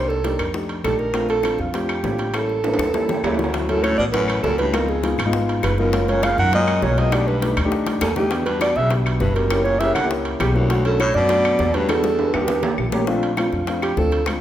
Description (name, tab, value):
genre	Afro-Cuban jazz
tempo	201 BPM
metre	4/4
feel	straight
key	D major from 3.5 s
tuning	A4 = 440 Hz
part	dark alto saxophone	melody	0.0-14.3 s	F4 to F#5	-22 LUFS	right 2 dB	none
part	dark concert grand piano	accompaniment	0.0-14.4 s	F#3 to G5	-24 LUFS	left 2 dB	none
part	upright bass	bass	0.0-14.4 s	F#1 to F#2	-24 LUFS	equal	none
part	bongos	percussion	0.1-14.4 s	none	-30 LUFS	left 4 dB	none
part	timbales	percussion	0.2-14.4 s	none	-28 LUFS	right 3 dB	none
part	claves	percussion	0.4-14.4 s	none	-33 LUFS	left 4 dB	none
part	bright baritone saxophone	second line	3.2-12.9 s	D2 to Eb3	-26 LUFS	left 2 dB	none
room	moderate scoring stage reverb, RT60 1.8 s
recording	recorded in a church or concert hall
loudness	-17 LUFS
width	side -12 dB against mid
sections	0.0-3.5 A section; 3.5-13.1 B section; 13.1-14.4 C section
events	drum fill 2.6-3.5, 7.9-8.3, 11.9-13.1; grand piano fill 2.9-3.5; alto saxophone solo 13.1-14.4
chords	0.0 Cm7; 0.5 F13; 1.1 Bbmaj9; 2.3 A7b9; 3.5 Dmaj9; 4.7 C#9; 5.9 F#maj9; 7.1 B7alt; 8.3 Em7; 9.5 F#7b9; 10.7 Bm7; 11.9 Em7; 12.5 Eb7#11; 13.1 Bbmaj9